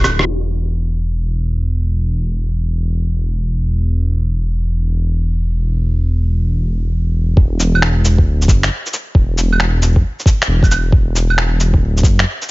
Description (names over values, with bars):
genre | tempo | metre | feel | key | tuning
future garage | 135 BPM | 4/4 | swing 66% on 16ths | unclear | A4 = 440 Hz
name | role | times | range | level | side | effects
dark detuned saw bass | bass | 0.0-12.2 s | D1 to F#1 | -15 LUFS | equal | tube saturation, sidechain pumping
electronic rim click, shaker, claves, cabasa and finger snaps | drums | 0.0-0.2, 7.6-12.5 s | none | -18 LUFS | right 1 dB | small room ambience
electronic kick drum | drums | 7.4-12.2 s | none | -11 LUFS | equal | small room ambience
room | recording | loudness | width
little or no reverb | low-pass filter, nothing above 7.6 kHz | -13 LUFS | side -21 dB against mid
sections
0.3-7.4 A section; 7.4-12.5 B section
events
drum fill 0.0; band accent 0.1; filter sweep 0.3-7.4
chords
none